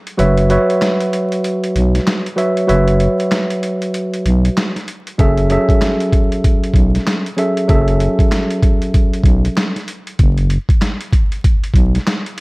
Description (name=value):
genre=hip hop, boom-bap hip-hop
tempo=96 BPM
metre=4/4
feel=swing 62% on 16ths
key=F# minor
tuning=A4 = 441 Hz
part: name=boom bap sampler-style drum kit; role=drums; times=0.1-12.4 s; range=handclaps, hi-hat, kick drum, snare drum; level=-15 LUFS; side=equal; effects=none
part: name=tine electric piano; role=accompaniment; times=0.2-9.7 s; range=F#3 to E5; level=-16 LUFS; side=right 1 dB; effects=high-pass filter, low-pass filter
part: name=growling FM bass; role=bass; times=0.2-12.0 s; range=F#1 to B1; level=-14 LUFS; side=equal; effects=none
room=light reverb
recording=dark, warm production, vinyl crackle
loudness=-13 LUFS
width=side -26 dB against mid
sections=0.0-12.4 A section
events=break 0.0-5.2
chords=0.2 F#7sus4; 5.2 F#m9; 10.2 F#sus4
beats=| 0.19 0.82 1.44 2.07 | 2.69 3.32 3.94 4.57 | 5.19 5.82 6.44 7.07 | 7.69 8.32 8.94 9.57 | 10.19 10.82 11.44 12.07